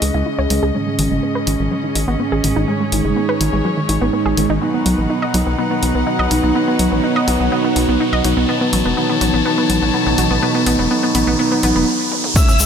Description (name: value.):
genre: melodic techno.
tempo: 124 BPM.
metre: 4/4.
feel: straight.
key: unclear.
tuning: A4 = 441 Hz.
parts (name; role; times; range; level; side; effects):
soft octave-layered synth lead; melody; 0.0-12.7 s; C#4 to E5; -21 LUFS; equal; chorus, phaser, sidechain pumping, ping-pong delay.
warm chamber string section; sustained chords; 0.0-12.7 s; D#3 to A5; -24 LUFS; left 2 dB; sidechain pumping.
analog pluck; arpeggios; 0.0-12.7 s; D#3 to D#5; -21 LUFS; equal; chorus, sidechain pumping, digital delay.
analog synth brass; stabs; 0.0-12.7 s; G#2 to C#4; -22 LUFS; right 5 dB; chorus, sidechain pumping, digital delay.
gritty driven synth bass; bass; 0.0-12.7 s; E1 to C#2; -20 LUFS; equal; sidechain pumping.
punchy analog drum machine; drums; 0.0-12.7 s; crash cymbal, hi-hat, ride cymbal, toms; -23 LUFS; equal; high-pass filter on hats, small room ambience, high-pass filter on toms, high-pass filter on cymbals.
riser; sound effects; 0.5-12.4 s; none; -26 LUFS; left 1 dB; none.
deep dark ambient pad; texture; 0.0-11.9 s; B3 to C#6; -26 LUFS; left 2 dB; chorus, built-in reverb, sidechain pumping.
soft supersaw; second line; 12.4-12.7 s; E6; -20 LUFS; left 1 dB; sidechain pumping.
electronic kick drum; drums; 12.4-12.5 s; none; -12 LUFS; equal; small room ambience.
tube shaker; percussion; 12.4-12.7 s; none; -19 LUFS; left 6 dB; none.
room: moderate lush hall reverb, RT60 2.0 s.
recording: none.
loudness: -14 LUFS.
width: side -7 dB against mid.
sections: 0.0-12.4 A section.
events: build-up 0.0-12.4; filter sweep on synth arpeggio sound 0.0-12.4; filter sweep on soft synth lead 0.0-12.4; filter sweep on analog polysynth 0.0-12.4; riser 0.5-12.4; stop 11.9-12.4; drum fill 12.1.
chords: 0.0 C#madd9; 0.7 G#sus4; 4.6 B; 8.5 A.